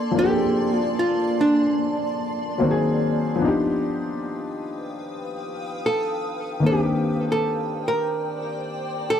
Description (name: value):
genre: hip hop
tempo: 74 BPM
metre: 4/4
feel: swing 60% on 16ths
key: unclear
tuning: A4 = 441 Hz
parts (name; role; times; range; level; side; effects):
- archtop guitar, miked and amplified; melody; 0.0-9.2 s; D4 to Bb4; -23 LUFS; right 1 dB; plate reverb, tape echo
- warm upright piano; accompaniment; 0.0-9.2 s; Eb3 to A4; -24 LUFS; left 2 dB; plate reverb
- granular cloud pad; sustained chords; 0.0-9.2 s; Bb3 to Eb6; -29 LUFS; right 1 dB; built-in reverb
room: moderate studio ambience, RT60 0.5 s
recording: dark, warm production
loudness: -21 LUFS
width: side -9 dB against mid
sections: 0.0-9.2 A section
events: none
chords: 0.0 Bbmaj9; 2.6 Ab9; 3.4 G7b13; 6.7 Cm9